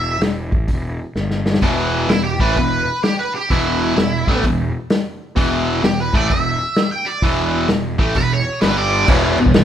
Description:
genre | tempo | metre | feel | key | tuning
blues rock power trio and southern rock | 129 BPM | 4/4 | swing 65% on 8ths | unclear | A4 = 440 Hz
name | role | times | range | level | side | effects
octave-fuzz lead guitar | melody | 0.0-9.1 s | E4 to G5 | -21 LUFS | right 2 dB | wah, distortion
fuzz fingered electric bass | bass | 0.0-9.6 s | E1 to A1 | -23 LUFS | equal | overdrive
vintage drum kit | drums | 0.2-9.6 s | crash cymbal, hi-hat, kick drum, snare drum | -18 LUFS | equal | none
distorted electric guitar | riff | 1.6-9.6 s | E2 to A3 | -18 LUFS | equal | overdrive
room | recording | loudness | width
light reverb | band playing live in one room | -15 LUFS | side -10 dB against mid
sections
0.0-9.1 A section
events
drum fill 1.2-1.6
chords
0.0 E5; 1.2 N.C.; 1.6 E5; 8.6 G5; 9.1 E5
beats
0.22 0.69 1.16 | 1.63 2.10 2.56 3.03 | 3.50 3.97 4.43 4.90 | 5.37 5.83 6.30 6.76 | 7.23 7.69 8.15 8.62 | 9.08 9.54

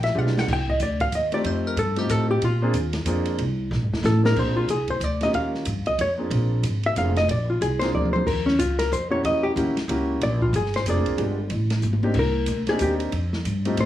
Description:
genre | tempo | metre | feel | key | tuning
jazz, small-group swing and bop | 185 BPM | 3/4 | swing 61% on 8ths | Bb mixolydian | A4 = 440 Hz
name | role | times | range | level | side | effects
hollow-body jazz guitar | melody | 0.0-13.9 s | Db4 to G5 | -24 LUFS | left 1 dB | none
upright bass | bass | 0.0-13.9 s | Eb1 to Bb2 | -24 LUFS | equal | none
open jazz drum kit | drums | 0.0-13.9 s | crash cymbal, hi-hat, kick drum, ride cymbal, snare drum, toms | -31 LUFS | equal | none
warm grand piano | accompaniment | 0.1-13.9 s | Ab3 to Ab4 | -26 LUFS | equal | none
room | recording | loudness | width
light reverb | small room ambience | -21 LUFS | side -12 dB against mid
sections
0.0-4.4 A section; 4.4-13.9 A section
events
hollow-body jazz guitar solo 0.0-13.9; drum fill 0.2-0.5, 3.7-4.4, 7.9-8.3, 11.8-12.2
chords
0.5 Cm; 1.5 F9; 2.4 Bb9; 3.4 Cm7; 4.0 F; 4.4 Bb9; 5.3 Eb9; 6.3 Bb9; 8.3 Eb9; 9.2 Edim7; 10.2 Bb9; 11.2 G7b9; 12.2 Cm7; 13.1 F9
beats
0.16 | 0.48 0.80 1.13 | 1.45 1.78 2.10 | 2.42 2.75 3.07 | 3.40 3.72 4.05 | 4.37 4.70 5.02 | 5.34 5.67 5.99 | 6.32 6.64 6.97 | 7.29 7.62 7.94 | 8.27 8.59 8.91 | 9.24 9.56 9.89 | 10.21 10.54 10.86 | 11.19 11.51 11.83 | 12.16 12.48 12.81 | 13.13 13.45 13.78

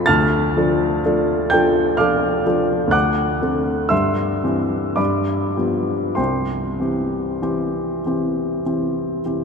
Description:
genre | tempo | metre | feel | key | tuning
classical, romantic nocturne for solo piano | 47-64 BPM | 3/4 | rubato | C major | A4 = 441 Hz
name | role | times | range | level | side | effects
warm grand piano | solo | 0.0-9.4 s | C2 to C7 | -17 LUFS | equal | none
room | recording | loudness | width
wet cathedral reverb, RT60 5.7 s | in a vast, echoing space | -17 LUFS | side -5 dB against mid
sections
0.0-9.4 A section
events
none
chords
0.1 Dm; 2.9 D7; 3.9 C/G; 5.0 G7; 6.2 C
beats
| 0.08 1.04 1.99 | 2.94 3.91 4.99 | 6.18 7.42 8.65

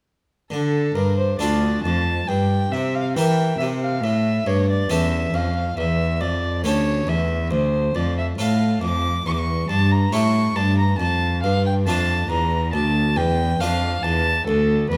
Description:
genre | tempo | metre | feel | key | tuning
classical, baroque-style sonata movement with continuo | 69 BPM | 4/4 | straight | D minor | A4 = 440 Hz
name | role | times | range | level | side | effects
warm violin | melody | 0.5-15.0 s | A4 to D6 | -26 LUFS | equal | none
harpsichord | accompaniment | 0.5-15.0 s | D2 to Bb4 | -28 LUFS | equal | none
warm cello | bass | 0.5-15.0 s | D2 to E3 | -24 LUFS | equal | none
room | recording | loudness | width
moderate recital hall reverb, RT60 1.4 s | none | -21 LUFS | mono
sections
0.5-15.0 A section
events
none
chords
0.5 Dm; 2.3 Edim/G; 4.0 A7; 7.5 Dm; 9.3 A5/E; 11.0 Dm; 14.5 N.C.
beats
| 0.51 1.40 2.28 3.15 | 4.02 4.90 5.78 6.65 | 7.51 8.39 9.26 10.13 | 10.99 11.87 12.74 13.60 | 14.47

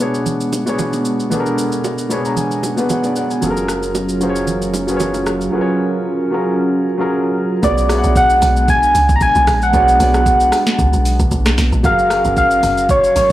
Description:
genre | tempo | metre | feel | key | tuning
amapiano | 114 BPM | 4/4 | swing 55% on 16ths | unclear | A4 = 439 Hz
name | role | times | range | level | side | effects
warm grand piano | accompaniment | 0.0-13.3 s | B2 to B5 | -19 LUFS | left 1 dB | none
hollow soft pad | sustained chords | 0.0-13.3 s | F#3 to E#5 | -22 LUFS | right 2 dB | chorus, sidechain pumping
afro-pop drum kit | drums | 0.0-13.3 s | hi-hat, kick drum, rim click, shaker, snare drum | -20 LUFS | equal | soft clipping on snare
congas and bongos | percussion | 0.3-5.3 s | none | -24 LUFS | right 5 dB | none
warm sub bass | bass | 3.4-5.5 s | F#1 | -29 LUFS | equal | none
soft struck synth lead | melody | 7.6-13.3 s | C#5 to A#5 | -13 LUFS | equal | chorus, digital delay
deep log drum bass | bass | 7.6-13.3 s | F#1 to C#2 | -17 LUFS | equal | none
room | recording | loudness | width
light reverb | blown-out, overdriven recording, overdrive, small room ambience | -13 LUFS | side -14 dB against mid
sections
0.0-7.6 A section; 7.6-13.3 B section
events
grand piano fill 1.8-3.4; drop 7.6-13.3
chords
0.0 Bm6; 3.4 F#maj7; 7.6 Bm6; 11.8 F#maj7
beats
0.26 0.79 | 1.31 1.84 2.37 2.89 | 3.42 3.95 4.47 5.00 | 5.53 6.05 6.58 7.11 | 7.63 8.16 8.68 9.21 | 9.74 10.26 10.79 11.31 | 11.84 12.37 12.89

